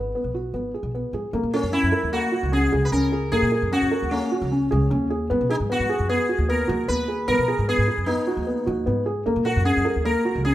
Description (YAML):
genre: contemporary instrumental, chamber music in an uneven meter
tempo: 151 BPM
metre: 5/4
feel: straight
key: unclear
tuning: A4 = 437 Hz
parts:
  - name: sitar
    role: melody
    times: 0.0-10.5 s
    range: B3 to B4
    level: -26 LUFS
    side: equal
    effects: none
  - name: felt-muted upright piano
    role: arpeggios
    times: 0.0-10.5 s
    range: A#3 to B4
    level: -23 LUFS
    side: equal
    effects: none
  - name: upright bass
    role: bass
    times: 0.0-10.5 s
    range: G#1 to B2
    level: -25 LUFS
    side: equal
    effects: none
room: moderate recital hall reverb, RT60 1.5 s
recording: none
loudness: -20 LUFS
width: side -14 dB against mid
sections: 0.0-1.3 A section; 1.3-10.5 B section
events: none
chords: 0.0 G#m7; 1.3 F#add9; 5.3 G#m7; 9.3 F#add9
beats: 0.15 0.55 0.94 | 1.34 1.74 2.13 2.53 2.92 | 3.32 3.72 4.11 4.51 4.90 | 5.30 5.70 6.09 6.49 6.89 | 7.28 7.68 8.07 8.47 8.87 | 9.27 9.66 10.06 10.46